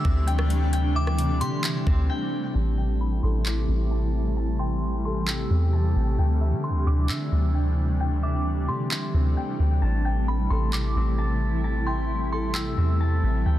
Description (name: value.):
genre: hip hop, atmospheric cloud-rap.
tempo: 132 BPM.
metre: 4/4.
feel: half-time.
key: A minor.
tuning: A4 = 440 Hz.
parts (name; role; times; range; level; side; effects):
glassy synth bell; melody; 0.0-13.4 s; B5 to E6; -35 LUFS; left 1 dB; chorus, low-pass filter, digital delay.
granular cloud pad; sustained chords; 0.0-13.6 s; C3 to G4; -29 LUFS; equal; built-in reverb, sidechain pumping, low-pass filter.
concert harp; arpeggios; 0.0-13.6 s; C4 to A5; -34 LUFS; left 4 dB; low-pass filter, digital delay.
soft 808-style bass; bass; 0.0-13.6 s; A1 to D3; -23 LUFS; equal; none.
trap drum kit; drums; 0.0-12.7 s; handclaps, hi-hat, kick drum, rim click; -29 LUFS; equal; none.
room: little or no reverb.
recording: dense, heavily limited modern master.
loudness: -22 LUFS.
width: side -13 dB against mid.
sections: 0.0-2.5 A section; 2.5-13.6 B section.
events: break 2.1-2.5; hi-hats muted 2.5-9.8; filter sweep 2.5-13.6.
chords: 0.0 D9sus4; 2.5 Am7; 6.2 D9sus4; 9.8 Am7.